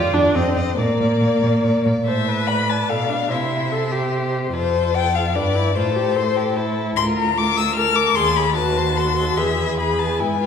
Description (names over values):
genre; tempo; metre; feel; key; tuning
quick classical-period movement for string quartet; 147 BPM; 3/4; rubato; A minor; A4 = 436 Hz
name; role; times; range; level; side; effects
rich violin; melody; 0.0-10.5 s; C5 to F6; -22 LUFS; left 9 dB; none
rich violin; second line; 0.0-10.5 s; G4 to Eb5; -26 LUFS; left 2 dB; none
rich viola; accompaniment; 0.0-10.5 s; Bb3 to C5; -22 LUFS; right 1 dB; none
rich cello; bass; 0.1-10.5 s; D2 to C3; -23 LUFS; right 1 dB; none
room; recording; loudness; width
wet recital hall reverb, RT60 1.8 s; heard from further back in the room; -17 LUFS; side -7 dB against mid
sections
0.0-2.1 A section; 2.1-10.5 B section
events
none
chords
0.4 F5; 0.8 Bb; 2.1 Am; 3.3 Am/C; 4.5 F; 5.8 F/A; 7.0 Bb/D; 8.2 D#dim7; 9.4 E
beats
0.35 | 0.78 1.21 1.64 | 2.07 2.48 2.89 | 3.30 3.71 4.12 | 4.53 4.94 5.35 | 5.75 6.16 6.56 | 6.97 7.37 7.76 | 8.16 8.57 8.97 | 9.38 9.79 10.20